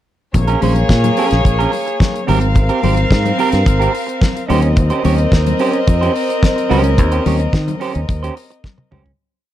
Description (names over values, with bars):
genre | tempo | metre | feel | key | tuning
disco | 108 BPM | 4/4 | straight | unclear | A4 = 435 Hz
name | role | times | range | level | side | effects
warm studio violin section | second line | 0.3-8.9 s | Bb3 to F5 | -18 LUFS | left 1 dB | none
semi-hollow electric guitar | accompaniment | 0.3-9.1 s | C4 to Db5 | -20 LUFS | right 6 dB | none
fingered electric bass | bass | 0.3-9.1 s | Ab1 to Eb3 | -16 LUFS | equal | none
damped 70s drum kit | drums | 0.3-9.2 s | hi-hat, kick drum, snare drum, toms | -17 LUFS | equal | none
congas | percussion | 0.3-9.0 s | none | -24 LUFS | left 7 dB | none
room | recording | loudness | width
light reverb, studio ambience | dark, warm production | -12 LUFS | side -12 dB against mid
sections
0.3-9.2 verse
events
fade-out 7.0-9.2; drum fill 8.6-9.2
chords
0.3 Bbm7; 2.3 Abmaj9; 4.5 Eb13